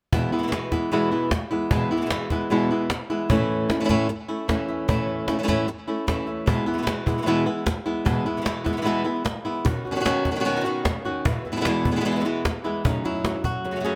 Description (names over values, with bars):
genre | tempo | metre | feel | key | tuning
flamenco | 151 BPM | 4/4 | straight | E major | A4 = 440 Hz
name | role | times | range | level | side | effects
flamenco guitar | melody | 0.1-14.0 s | E2 to G#4 | -26 LUFS | equal | tape echo
flamenco guitar | stabs | 0.1-14.0 s | E2 to F#4 | -34 LUFS | equal | none
cajon | percussion | 0.1-13.8 s | none | -28 LUFS | equal | none
room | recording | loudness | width
light reverb | close, detailed microphones | -24 LUFS | mono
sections
0.1-12.8 A section; 12.8-14.0 B section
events
none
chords
0.1 E; 3.3 A; 6.5 E; 9.7 Badd9; 11.3 E; 12.8 F#m